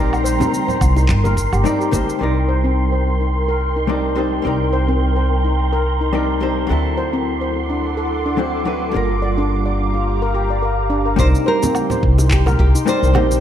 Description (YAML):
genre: sunset chillout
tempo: 107 BPM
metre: 4/4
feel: swing 56% on 16ths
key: C minor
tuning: A4 = 440 Hz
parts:
  - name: hollow-body jazz guitar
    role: accompaniment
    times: 0.0-13.4 s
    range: F#3 to D5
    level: -23 LUFS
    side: moving between left 5 dB and right 5 dB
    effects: auto-pan, tape echo
  - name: ethereal airy pad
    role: sustained chords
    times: 0.0-13.4 s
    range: G4 to D6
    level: -24 LUFS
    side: equal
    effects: ensemble chorus, built-in reverb
  - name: steel pan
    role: arpeggios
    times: 0.0-13.3 s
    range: C4 to D5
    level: -24 LUFS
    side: left 1 dB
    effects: low-pass filter, tape echo
  - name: upright bass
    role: bass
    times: 0.0-13.4 s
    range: G1 to D2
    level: -18 LUFS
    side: equal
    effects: tube saturation
  - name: wind-like tuned noise texture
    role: texture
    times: 0.0-11.2 s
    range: C6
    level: -32 LUFS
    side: right 5 dB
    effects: built-in reverb
  - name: electronic woodblock, shaker and handclaps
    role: drums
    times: 0.1-2.2, 11.2-13.4 s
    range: none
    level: -27 LUFS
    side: right 2 dB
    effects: none
  - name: congas and bongos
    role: percussion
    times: 0.4-2.1, 11.6-13.3 s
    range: none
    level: -25 LUFS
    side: right 2 dB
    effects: none
  - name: electronic kick drum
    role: drums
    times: 0.8-2.1, 11.2-12.7 s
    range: none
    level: -20 LUFS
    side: equal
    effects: none
  - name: nylon-string guitar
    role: melody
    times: 11.2-13.4 s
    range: G4 to C5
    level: -21 LUFS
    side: right 1 dB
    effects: tape echo
room: light reverb, studio reverb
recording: none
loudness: -15 LUFS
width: side -10 dB against mid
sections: 0.0-2.2 A section; 2.2-11.2 B section; 11.2-13.4 C section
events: filter sweep on steel pan 2.2-11.2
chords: 0.0 Cm7; 6.7 D7; 8.9 Gm7; 11.2 Cm7